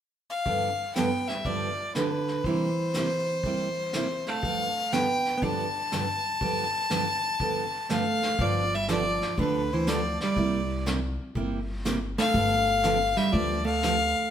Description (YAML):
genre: country, western swing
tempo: 121 BPM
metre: 4/4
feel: swing 67% on 8ths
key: G mixolydian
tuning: A4 = 441 Hz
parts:
  - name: clear fiddle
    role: melody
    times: 0.3-14.3 s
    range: B4 to A5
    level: -27 LUFS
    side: left 2 dB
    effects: none
  - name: picked steel-string acoustic guitar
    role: accompaniment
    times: 0.5-14.0 s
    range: G2 to G4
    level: -32 LUFS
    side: right 3 dB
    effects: none
  - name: vintage brush drum kit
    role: drums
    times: 0.5-14.3 s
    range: brushed snare drum, hi-hat, kick drum, snare drum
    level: -36 LUFS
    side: left 1 dB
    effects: none
  - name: hollow-body jazz guitar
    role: second line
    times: 1.0-14.3 s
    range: D3 to D4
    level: -30 LUFS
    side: right 3 dB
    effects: none
  - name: upright bass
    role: bass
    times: 8.4-14.1 s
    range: G1 to D2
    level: -31 LUFS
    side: left 1 dB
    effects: none
room: wet stone room reverb, RT60 1.2 s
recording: band playing live in one room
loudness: -24 LUFS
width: side -9 dB against mid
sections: 0.5-8.4 A section; 8.4-14.3 B section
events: none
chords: 0.5 G7; 2.4 C7; 4.4 G7; 10.4 C9; 12.3 G9